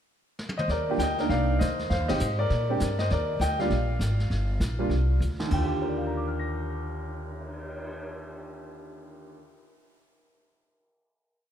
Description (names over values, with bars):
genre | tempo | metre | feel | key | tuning
jazz piano trio | 200 BPM | 4/4 | swing 62% on 8ths | Eb major | A4 = 440 Hz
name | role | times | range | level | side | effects
jazz brush drum kit | drums | 0.4-7.8 s | brushed snare drum, crash cymbal, cymbal swell, hi-hat, kick drum, ride cymbal, snare drum, toms | -37 LUFS | equal | none
warm baby grand piano | melody | 0.6-9.7 s | Eb2 to Bb6 | -29 LUFS | equal | ping-pong delay
upright bass | bass | 0.7-9.4 s | G1 to Bb2 | -28 LUFS | equal | none
room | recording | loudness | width
moderate plate reverb, RT60 1.8 s | dreamy mix soaked in reverb | -25 LUFS | side -9 dB against mid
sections
0.0-0.7 pickup bar; 0.7-5.5 A section; 5.5-7.9 final chord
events
drum fill 0.4-0.7, 5.2; band accent 2.0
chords
0.0 N.C.; 0.7 Ebmaj7; 1.3 Cm9; 1.9 Fm7; 2.5 Bb69; 3.1 Ebmaj9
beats
0.09 0.39 | 0.69 0.99 1.30 1.60 | 1.90 2.20 2.50 2.80 | 3.10 3.41 3.71 4.01 | 4.31 4.61 4.91 5.21 | 5.51 5.80 6.10 6.40 | 6.70 7.00 7.30 7.60